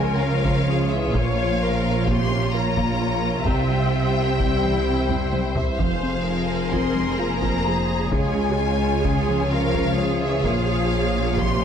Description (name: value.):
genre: cinematic, hybrid orchestral and electronic film score.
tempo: 129 BPM.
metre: 5/4.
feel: straight.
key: F harmonic minor.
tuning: A4 = 440 Hz.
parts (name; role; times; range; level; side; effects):
warm symphonic violin section; melody; 0.0-11.6 s; E5 to C6; -28 LUFS; left 5 dB; none.
rich symphonic violin section; second line; 0.0-11.6 s; E4 to Db5; -29 LUFS; left 2 dB; none.
warm studio viola section; accompaniment; 0.0-11.6 s; F4 to E5; -29 LUFS; right 2 dB; none.
dark French horn section; sustained chords; 0.0-11.6 s; C3 to C4; -27 LUFS; left 4 dB; none.
tight sequenced synth; arpeggios; 0.0-11.6 s; C3 to Bb4; -31 LUFS; right 1 dB; chorus, phaser.
swelling detuned saw bass; bass; 0.0-11.6 s; F1 to Db2; -28 LUFS; equal; none.
warm studio double bass section; bass; 0.0-11.6 s; F1 to Db2; -28 LUFS; right 4 dB; none.
warm symphonic cello section; bass; 0.0-11.6 s; F2 to Db3; -27 LUFS; right 3 dB; none.
taiko ensemble; drums; 0.4-11.6 s; none; -28 LUFS; equal; none.
room: moderate recital hall reverb, RT60 1.4 s.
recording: none.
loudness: -19 LUFS.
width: side -8 dB against mid.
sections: 0.0-11.6 A section.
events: drum fill 5.1-5.8.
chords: 0.0 Db; 1.1 Bbm; 3.5 C; 5.8 Fm; 8.1 Db; 10.4 Bbm.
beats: 0.21 0.68 | 1.14 1.61 2.07 2.54 3.00 | 3.47 3.93 4.40 4.86 5.33 | 5.79 6.26 6.72 7.19 7.66 | 8.12 8.59 9.05 9.52 9.98 | 10.45 10.91 11.38.